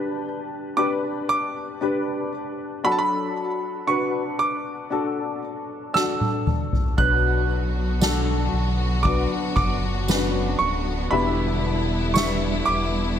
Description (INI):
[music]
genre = pop ballad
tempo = 58 BPM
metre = 4/4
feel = straight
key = B minor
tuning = A4 = 440 Hz
[part]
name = bright concert grand piano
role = melody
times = 0.0-13.2 s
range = A5 to G6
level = -26 LUFS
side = right 3 dB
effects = none
[part]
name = warm upright piano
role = accompaniment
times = 0.0-13.2 s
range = G2 to E5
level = -26 LUFS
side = left 3 dB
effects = ensemble chorus
[part]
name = soft-mallet drum kit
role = drums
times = 6.0-12.9 s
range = kick drum, ride cymbal, snare drum, toms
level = -26 LUFS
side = equal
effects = none
[part]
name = rich symphonic string section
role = sustained chords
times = 7.0-13.2 s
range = D3 to F#4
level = -27 LUFS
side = equal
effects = none
[part]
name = sub bass with octave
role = bass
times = 7.0-13.2 s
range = D1 to B1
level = -25 LUFS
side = equal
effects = none
[part]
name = tambourine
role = percussion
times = 8.0-12.4 s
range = none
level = -35 LUFS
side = right 8 dB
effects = none
[sound]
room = light reverb, studio ambience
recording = bright 1980s-style digital production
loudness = -21 LUFS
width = side -9 dB against mid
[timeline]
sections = 0.0-13.2 A section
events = drum fill 6.0-7.0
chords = 0.0 G; 2.8 D/F#; 7.0 Bm; 11.1 Em7